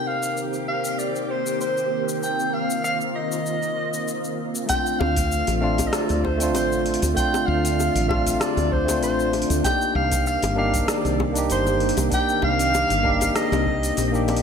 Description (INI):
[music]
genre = sunset chillout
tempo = 97 BPM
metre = 4/4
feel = swing 53% on 16ths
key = C dorian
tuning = A4 = 440 Hz
[part]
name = mellow soprano saxophone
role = melody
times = 0.0-14.3 s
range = C5 to G5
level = -24 LUFS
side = equal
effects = vintage 12-bit sampler grit, ping-pong delay
[part]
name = tine electric piano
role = accompaniment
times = 0.0-14.4 s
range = C3 to Bb4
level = -26 LUFS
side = moving between left 5 dB and right 5 dB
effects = auto-pan
[part]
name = soft string machine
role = sustained chords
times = 0.0-14.4 s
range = D3 to G4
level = -28 LUFS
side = equal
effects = phaser, ensemble chorus
[part]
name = deep house drum kit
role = drums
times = 0.2-14.4 s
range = hi-hat, rim click, shaker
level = -30 LUFS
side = left 1 dB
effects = overdrive, gated reverb
[part]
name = electronic kick drum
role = drums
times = 4.7-13.8 s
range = none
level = -28 LUFS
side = equal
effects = none
[part]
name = bongos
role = percussion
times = 4.7-14.4 s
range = none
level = -33 LUFS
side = left 6 dB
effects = none
[part]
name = woody fretless electric bass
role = bass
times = 5.0-14.4 s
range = G1 to D2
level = -25 LUFS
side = equal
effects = none
[sound]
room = moderate lush hall reverb, RT60 1.7 s, digital ambience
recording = bright 1980s-style digital production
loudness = -20 LUFS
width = side -6 dB against mid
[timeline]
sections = 0.0-4.7 A section; 4.7-14.4 B section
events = none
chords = 0.0 Cm7; 4.7 Dm7; 9.6 Cm7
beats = 0.37 0.98 1.60 | 2.22 2.84 3.46 4.08 | 4.70 5.32 5.93 6.55 | 7.17 7.79 8.41 9.03 | 9.64 10.26 10.88 11.50 | 12.12 12.74 13.36 13.97